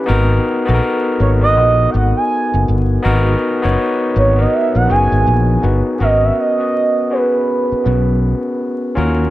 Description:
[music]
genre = R&B, neo-soul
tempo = 81 BPM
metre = 4/4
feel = swing 61% on 16ths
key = G# minor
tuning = A4 = 440 Hz
[part]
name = overdriven tine electric piano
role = accompaniment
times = 0.0-9.3 s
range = B3 to C#5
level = -17 LUFS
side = left 2 dB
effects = none
[part]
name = fretless electric bass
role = bass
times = 0.1-9.3 s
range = F#1 to D#2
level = -14 LUFS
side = equal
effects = ensemble chorus
[part]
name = gliding portamento lead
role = melody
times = 1.2-8.6 s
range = B4 to G#5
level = -17 LUFS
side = right 3 dB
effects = chorus, tape echo
[sound]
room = light reverb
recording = vinyl crackle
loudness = -12 LUFS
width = side -15 dB against mid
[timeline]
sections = 0.0-6.0 A section; 6.0-9.3 B section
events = none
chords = 0.1 G#m9; 6.0 G#m11

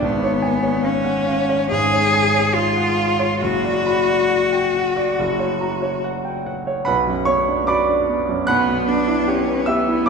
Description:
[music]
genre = classical, romantic duo for cello and grand piano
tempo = 67-76 BPM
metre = 4/4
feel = rubato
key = B minor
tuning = A4 = 439 Hz
[part]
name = rich cello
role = melody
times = 0.0-10.1 s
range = B3 to G#4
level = -19 LUFS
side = left 3 dB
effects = none
[part]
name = clear concert grand piano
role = accompaniment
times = 0.0-10.1 s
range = F#1 to F#6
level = -19 LUFS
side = right 2 dB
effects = none
[sound]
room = wet church reverb, RT60 2.7 s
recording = recorded in a church or concert hall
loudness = -16 LUFS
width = side -5 dB against mid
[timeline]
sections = 0.0-6.9 A section; 6.9-10.1 B section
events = none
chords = 0.0 C#7/G#; 3.4 Bm/F#; 5.2 F#; 6.9 Bm; 8.5 Em/B

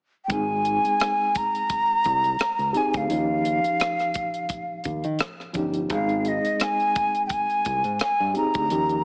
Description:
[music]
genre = lush 1970s-style soul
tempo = 86 BPM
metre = 4/4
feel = swing 54% on 16ths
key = Ab major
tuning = A4 = 438 Hz
[part]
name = breathy jazz flute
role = melody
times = 0.2-9.0 s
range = Eb5 to Bb5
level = -25 LUFS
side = equal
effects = slapback echo
[part]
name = reed electric piano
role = accompaniment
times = 0.3-9.0 s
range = F3 to Ab4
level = -31 LUFS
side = equal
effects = overdrive, fast tremolo
[part]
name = fingered electric bass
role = bass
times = 0.3-9.0 s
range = G1 to Eb3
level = -32 LUFS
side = equal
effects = none
[part]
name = tight funk drum kit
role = drums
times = 0.3-9.0 s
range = hi-hat, kick drum, rim click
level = -32 LUFS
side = equal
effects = none
[sound]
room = light reverb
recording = small speaker sound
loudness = -24 LUFS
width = mono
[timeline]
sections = 0.3-9.0 A section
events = none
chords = 0.3 Abmaj7; 3.1 Eb9; 5.9 Abmaj7

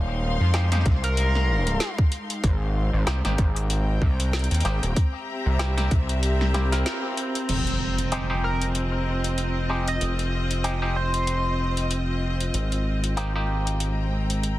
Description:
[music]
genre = glitch hop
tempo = 95 BPM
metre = 4/4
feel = swing 57% on 16ths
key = F minor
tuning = A4 = 440 Hz
[part]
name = gritty driven synth bass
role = bass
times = 0.0-14.6 s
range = Eb1 to F2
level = -24 LUFS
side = equal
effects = tube saturation
[part]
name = rich studio string section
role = texture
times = 0.0-14.6 s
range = Ab3 to C6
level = -30 LUFS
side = left 1 dB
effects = sidechain pumping
[part]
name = bright clav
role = stabs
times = 0.5-14.6 s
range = Ab3 to Bb4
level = -32 LUFS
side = equal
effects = auto-wah, sidechain pumping, low-pass filter, ping-pong delay
[part]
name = drum and bass drum kit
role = drums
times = 0.5-14.6 s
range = crash cymbal, hi-hat, snare drum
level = -30 LUFS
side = left 1 dB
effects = soft clipping on snare
[part]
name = electronic kick drum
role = drums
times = 0.9-6.1 s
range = none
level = -21 LUFS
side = equal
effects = none
[part]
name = sync lead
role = melody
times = 1.0-1.9, 8.4-11.9 s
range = Bb4 to Eb5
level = -31 LUFS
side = equal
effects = chorus, ping-pong delay
[part]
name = impact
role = sound effects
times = 7.5-10.0 s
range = none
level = -33 LUFS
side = equal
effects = none
[sound]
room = light reverb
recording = dense, heavily limited modern master, vinyl crackle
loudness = -22 LUFS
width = side -15 dB against mid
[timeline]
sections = 0.0-7.5 A section; 7.5-14.6 B section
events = break 6.9-7.5; band accent 6.9-7.2; impact 7.5-10.0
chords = 0.0 Abmaj9; 5.0 C7; 7.5 Fm7; 12.5 Abmaj9

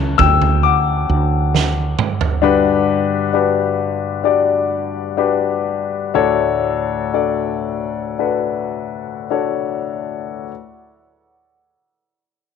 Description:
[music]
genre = pop ballad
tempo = 49-67 BPM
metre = 4/4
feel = straight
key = D major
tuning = A4 = 440 Hz
[part]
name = warm grand piano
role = accompaniment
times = 0.0-10.5 s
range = D2 to F#6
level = -17 LUFS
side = left 8 dB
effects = none
[part]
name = woody fretless electric bass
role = bass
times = 0.0-1.9 s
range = C#2 to D2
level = -17 LUFS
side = right 2 dB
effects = none
[part]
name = loose indie drum kit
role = drums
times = 0.2-2.4 s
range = kick drum, snare drum, toms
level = -19 LUFS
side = right 5 dB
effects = none
[sound]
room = wet spring reverb, RT60 2.2 s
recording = 1960s-style stereo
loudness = -15 LUFS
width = side -6 dB against mid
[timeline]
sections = 0.0-2.4 A section; 2.4-10.5 B section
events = grand piano solo 0.0-2.4; drum fill 1.5-2.4; slowing down 2.4-10.5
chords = 0.0 Dmaj7; 2.4 Gmaj7; 6.1 Dmaj7

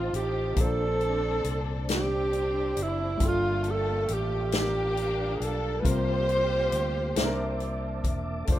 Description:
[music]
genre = slow gospel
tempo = 46 BPM (dotted quarters)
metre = 6/8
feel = straight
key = unclear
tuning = A4 = 441 Hz
[part]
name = dark studio string section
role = melody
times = 0.0-7.6 s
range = A3 to C5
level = -35 LUFS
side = left 5 dB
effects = tape echo
[part]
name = warm alto saxophone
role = melody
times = 0.0-7.6 s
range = E4 to C5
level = -29 LUFS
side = right 3 dB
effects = tape echo
[part]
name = warm grand piano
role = accompaniment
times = 0.0-8.6 s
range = G2 to E5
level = -36 LUFS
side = left 2 dB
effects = none
[part]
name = dark French horn section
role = sustained chords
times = 0.0-8.6 s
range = F3 to E5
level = -41 LUFS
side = left 2 dB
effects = none
[part]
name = mellow tonewheel organ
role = sustained chords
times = 0.0-8.6 s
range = Bb3 to D6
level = -40 LUFS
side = right 2 dB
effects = fast rotary speaker, chorus vibrato
[part]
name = fingered electric bass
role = bass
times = 0.0-8.6 s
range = E1 to D2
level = -32 LUFS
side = left 1 dB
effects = none
[part]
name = swinging big-band drum kit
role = drums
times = 0.1-8.6 s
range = hi-hat, kick drum, snare drum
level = -28 LUFS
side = left 1 dB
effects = none
[sound]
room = light reverb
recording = rough home demo mix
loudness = -25 LUFS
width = side -13 dB against mid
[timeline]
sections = 0.0-8.6 A section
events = none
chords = 0.0 F7/A; 0.6 Bbmaj9; 3.2 Gm9; 5.8 C7sus4; 7.2 C13

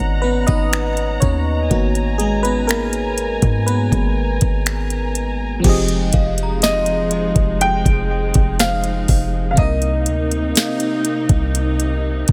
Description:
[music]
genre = contemporary R&B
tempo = 61 BPM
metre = 4/4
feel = straight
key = F minor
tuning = A4 = 439 Hz
[part]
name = FM electric piano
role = accompaniment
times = 0.0-12.3 s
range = C3 to Eb5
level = -25 LUFS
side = equal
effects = chorus
[part]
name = muted studio string section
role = sustained chords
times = 0.0-12.3 s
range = C3 to Bb5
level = -27 LUFS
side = equal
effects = none
[part]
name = warm 808-style bass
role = bass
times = 0.0-12.3 s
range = F1 to Ab2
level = -23 LUFS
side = equal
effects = none
[part]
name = smooth R&B drum kit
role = drums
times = 0.5-12.3 s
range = crash cymbal, finger snaps, hi-hat, kick drum, snare drum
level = -20 LUFS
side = equal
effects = none
[part]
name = synth chime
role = texture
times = 6.1-12.3 s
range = C5 to C6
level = -37 LUFS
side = equal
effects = ensemble chorus, phaser, tremolo, delay
[part]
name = warm baby grand piano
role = melody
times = 6.6-12.3 s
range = Eb5 to G5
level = -24 LUFS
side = equal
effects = delay
[sound]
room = little or no reverb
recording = none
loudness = -18 LUFS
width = mono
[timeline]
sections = 0.0-5.6 A section; 5.6-12.3 B section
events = FM electric piano solo 0.0-5.6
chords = 0.0 Abm9; 5.6 Fm7; 9.6 Cm7

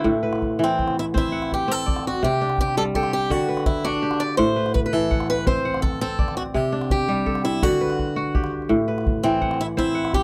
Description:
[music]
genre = west african traditional, West African string and xylophone music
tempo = 111 BPM (dotted quarters)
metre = 12/8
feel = straight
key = unclear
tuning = A4 = 440 Hz
[part]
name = kora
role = arpeggios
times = 0.0-10.2 s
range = A2 to F#5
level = -25 LUFS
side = equal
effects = none
[part]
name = calabash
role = percussion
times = 0.1-10.2 s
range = none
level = -30 LUFS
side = equal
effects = none
[part]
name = picked swing-style acoustic guitar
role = melody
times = 0.6-10.2 s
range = C4 to D5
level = -26 LUFS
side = equal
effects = none
[sound]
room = little or no reverb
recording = dry, close 1970s-style studio recording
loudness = -22 LUFS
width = mono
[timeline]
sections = 0.0-10.2 A section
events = none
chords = 0.1 Am; 2.2 C5; 3.3 D; 4.4 Am; 6.5 C5; 7.6 D; 8.7 Am

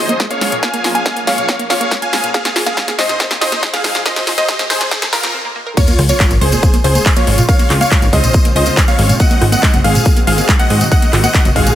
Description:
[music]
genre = uplifting trance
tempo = 140 BPM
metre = 4/4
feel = straight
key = unclear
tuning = A4 = 444 Hz
[part]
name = dense compressed supersaw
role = melody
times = 0.0-11.8 s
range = F4 to Ab5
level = -18 LUFS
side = equal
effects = sidechain pumping, low-pass filter, digital delay
[part]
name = wide unison pluck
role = second line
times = 0.0-11.8 s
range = Bb4 to Ab5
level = -22 LUFS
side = equal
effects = sidechain pumping, digital delay
[part]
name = shimmering ambient pad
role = sustained chords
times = 0.0-11.8 s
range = Db3 to Ab4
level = -24 LUFS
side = equal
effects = chorus, built-in reverb, sidechain pumping
[part]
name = wide unison pluck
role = arpeggios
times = 0.0-11.7 s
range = Bb2 to Bb4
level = -22 LUFS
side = right 2 dB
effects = cassette tape, sidechain pumping, digital delay
[part]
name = riser and sub drop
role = sound effects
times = 2.0-7.5 s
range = none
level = -27 LUFS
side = equal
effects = none
[part]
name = big-room dance drum kit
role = drums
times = 0.1-11.8 s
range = crash cymbal, handclaps, hi-hat, rim click, snare drum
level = -18 LUFS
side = left 1 dB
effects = high-pass filter on snare, high-pass filter on hats, high-pass filter on cymbals
[part]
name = electronic kick drum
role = drums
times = 0.2-11.6 s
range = none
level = -12 LUFS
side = equal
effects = high-pass filter on kick
[part]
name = tambourine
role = percussion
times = 5.8-11.8 s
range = none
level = -24 LUFS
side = left 3 dB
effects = none
[part]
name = plucky analog bass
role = bass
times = 6.0-11.7 s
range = Gb1 to Ab2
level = -14 LUFS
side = equal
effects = tube saturation, sidechain pumping
[sound]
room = light reverb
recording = high-pass filter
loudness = -11 LUFS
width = side -12 dB against mid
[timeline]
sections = 0.0-5.8 A section; 5.8-11.8 B section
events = build-up 0.0-5.8; drum fill 0.0-5.3; filter sweep on synth arpeggio sound 0.0-5.8; filter sweep on synth pluck 0.0-5.8; break 5.3-5.8; drop 5.8-11.8; impact 5.8-7.5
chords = 0.0 Bbm7; 2.3 Fm7; 5.8 Dbmaj7; 9.2 Ab7

